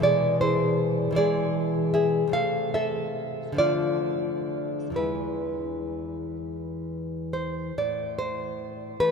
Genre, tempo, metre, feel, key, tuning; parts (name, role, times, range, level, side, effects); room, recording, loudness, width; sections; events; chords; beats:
romantic piece for solo classical guitar; 41-54 BPM (dotted quarters); 6/8; rubato; A minor; A4 = 438 Hz
nylon-string guitar; solo; 0.0-9.1 s; E2 to F5; -24 LUFS; equal
wet cathedral reverb, RT60 5.0 s; recorded in a church or concert hall; -24 LUFS; side -5 dB against mid
0.0-7.8 A section; 7.8-9.1 B section
0.0 E7/B; 2.3 Am/C; 3.6 Dm; 5.0 E; 7.8 Am
| 0.04 1.17 | 2.32 3.57 | 4.96 6.40 | 7.77 8.99